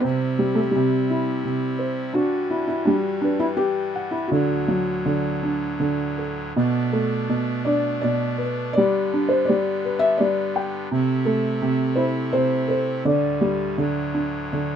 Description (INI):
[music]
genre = children's music, lullaby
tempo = 83 BPM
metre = 3/4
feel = rubato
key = unclear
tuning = A4 = 438 Hz
[part]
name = felt-muted upright piano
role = melody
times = 0.0-14.8 s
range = B2 to G5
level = -20 LUFS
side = equal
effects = none
[part]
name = pipe organ, trumpet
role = sustained chords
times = 0.0-14.8 s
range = D2 to E4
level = -32 LUFS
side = left 1 dB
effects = none
[sound]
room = light reverb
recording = minimal, uncompressed stereo recording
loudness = -20 LUFS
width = side -8 dB against mid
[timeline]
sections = 0.0-6.6 A section; 6.6-14.8 B section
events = none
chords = 0.0 C; 2.2 Emadd9; 4.3 D; 6.6 Bm7; 8.8 G; 10.9 C6; 13.1 Dsus4; 13.8 D